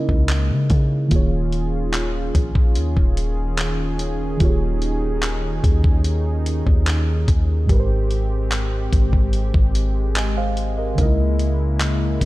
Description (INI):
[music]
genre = contemporary R&B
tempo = 73 BPM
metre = 4/4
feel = straight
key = unclear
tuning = A4 = 440 Hz
[part]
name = muted felt-like synth keys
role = accompaniment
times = 0.0-12.3 s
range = Ab2 to Ab5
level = -26 LUFS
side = right 3 dB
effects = chorus
[part]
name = warm analog pad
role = sustained chords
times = 0.0-12.3 s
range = Db3 to Ab4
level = -27 LUFS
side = left 1 dB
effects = chorus
[part]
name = warm 808-style bass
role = bass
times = 0.1-12.3 s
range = Eb1 to Db3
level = -21 LUFS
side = equal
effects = none
[part]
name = dusty soul sampler-style drum kit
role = drums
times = 0.1-12.3 s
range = handclaps, hi-hat, kick drum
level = -20 LUFS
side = equal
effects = none
[sound]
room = digital ambience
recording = dark, warm production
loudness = -17 LUFS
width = side -18 dB against mid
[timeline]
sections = 0.0-12.3 A section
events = none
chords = 0.0 Dbm6; 1.1 Eb9sus4; 7.7 Abmaj7; 11.0 Dbm6